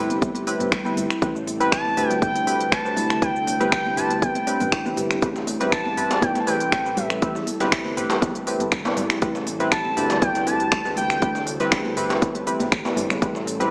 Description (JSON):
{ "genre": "afro house", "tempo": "120 BPM", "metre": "4/4", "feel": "straight", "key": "A minor", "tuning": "A4 = 436 Hz", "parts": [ { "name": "ethereal airy pad", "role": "sustained chords", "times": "0.0-13.7 s", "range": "C3 to B4", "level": "-40 LUFS", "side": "equal", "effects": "none" }, { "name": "kalimba", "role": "arpeggios", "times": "0.0-13.7 s", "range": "E3 to G4", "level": "-33 LUFS", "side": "equal", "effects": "sidechain pumping, tape echo" }, { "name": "warm analog keys", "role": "stabs", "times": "0.0-13.7 s", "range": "C4 to B4", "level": "-28 LUFS", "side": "equal", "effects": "chorus, sidechain pumping, tape echo" }, { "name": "dark detuned saw bass", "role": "bass", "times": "0.0-13.7 s", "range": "G1 to D2", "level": "-34 LUFS", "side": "equal", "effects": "sidechain pumping" }, { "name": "house drum kit", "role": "drums", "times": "0.1-13.7 s", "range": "finger snaps, hi-hat, shaker, toms", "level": "-29 LUFS", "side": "equal", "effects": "small room reverb" }, { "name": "congas", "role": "percussion", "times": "0.1-13.6 s", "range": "none", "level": "-34 LUFS", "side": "equal", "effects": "none" }, { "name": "electronic kick drum", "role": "drums", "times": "0.2-13.3 s", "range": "none", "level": "-26 LUFS", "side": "equal", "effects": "small room reverb" }, { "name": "expressive synth lead", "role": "melody", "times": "1.7-11.4 s", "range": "E5 to A5", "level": "-27 LUFS", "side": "equal", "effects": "subtle chorus" }, { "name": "djembe", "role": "percussion", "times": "5.2-13.7 s", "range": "none", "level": "-32 LUFS", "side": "equal", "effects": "none" } ], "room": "light reverb, digital ambience", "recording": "small speaker sound", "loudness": "-22 LUFS", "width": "mono", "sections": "0.0-13.7 A section", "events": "none", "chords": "0.0 Am7" }